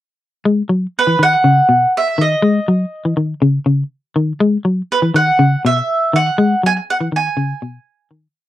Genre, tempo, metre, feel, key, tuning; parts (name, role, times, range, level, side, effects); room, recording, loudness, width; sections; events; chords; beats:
afrobeat; 122 BPM; 4/4; straight; G# minor; A4 = 439 Hz
clean electric guitar; arpeggios; 0.5-8.3 s; B2 to G#3; -14 LUFS; left 2 dB
mandolin; melody; 1.0-8.1 s; B4 to G#5; -14 LUFS; right 2 dB; slapback echo
light reverb; dry, close 1970s-style studio recording; -13 LUFS; side -14 dB against mid
0.5-8.4 groove
fade-out 6.4-8.4
0.5 G#5; 1.5 C#sus2; 2.4 G#5; 3.4 C#sus2; 4.4 G#5; 5.4 C#m9; 6.4 G#5; 7.4 C#sus2
| 0.46 0.96 1.45 1.95 | 2.44 2.93 3.43 3.92 | 4.41 4.91 5.40 5.89 | 6.38 6.88 7.37 7.86